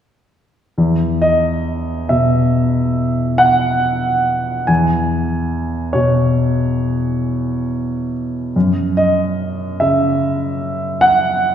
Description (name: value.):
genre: classical, impressionist solo piano.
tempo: 44-49 BPM (dotted quarters).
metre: 9/8.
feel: rubato.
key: E major.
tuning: A4 = 440 Hz.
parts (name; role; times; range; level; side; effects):
warm grand piano; solo; 0.8-11.5 s; E2 to G#5; -14 LUFS; equal; none.
room: wet concert hall reverb, RT60 1.8 s.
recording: heard from further back in the room.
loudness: -14 LUFS.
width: side -9 dB against mid.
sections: 0.8-11.5 A section.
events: none.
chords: 0.8 Esus2; 8.5 F#5.